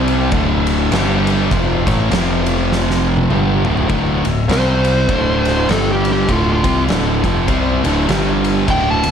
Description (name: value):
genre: stoner and doom metal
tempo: 101 BPM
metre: 4/4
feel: swing 59% on 8ths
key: D minor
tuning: A4 = 436 Hz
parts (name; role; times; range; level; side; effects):
- overdriven electric guitar; riff; 0.0-9.1 s; D2 to C4; -21 LUFS; left 1 dB; none
- thick fuzz guitar; riff; 0.0-9.1 s; D2 to C4; -21 LUFS; left 9 dB; distortion
- thick fuzz guitar; riff; 0.0-9.1 s; D2 to C4; -20 LUFS; right 9 dB; distortion
- growling picked electric bass; bass; 0.0-9.1 s; D1 to C2; -20 LUFS; equal; overdrive
- oversized low-tuned drum kit; drums; 0.1-9.1 s; kick drum, ride cymbal, snare drum, toms; -20 LUFS; left 1 dB; none
- fuzz lead guitar; melody; 4.5-9.1 s; F4 to A5; -20 LUFS; equal; distortion, analog delay
room: light reverb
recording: none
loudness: -13 LUFS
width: side -8 dB against mid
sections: 0.0-3.9 A section; 3.9-9.1 B section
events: drum fill 2.7-3.9; lead electric guitar solo 3.9-9.1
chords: 0.3 D5; 0.9 G5; 1.5 Fmaj7; 2.1 F5; 3.3 D5; 4.5 C5; 5.1 D5; 5.7 G5; 6.3 Dm; 8.1 G5